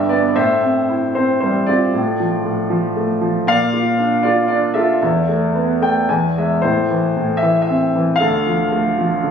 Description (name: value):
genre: classical, lyrical solo piano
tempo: 116 BPM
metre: 3/4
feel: rubato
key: A minor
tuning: A4 = 443 Hz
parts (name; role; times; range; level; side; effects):
- clear concert grand piano; solo; 0.0-9.3 s; G1 to G#5; -14 LUFS; equal; none
room: moderate small room reverb, RT60 0.5 s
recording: recorded on a phone in the room, studio reverb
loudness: -14 LUFS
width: side -7 dB against mid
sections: 0.3-9.3 A section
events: grand piano fill 0.0-0.3, 5.5-6.6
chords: 0.3 Am7; 1.9 Dm/A; 3.5 Bb; 5.0 Esus4; 6.1 E; 6.6 Am; 8.2 Dm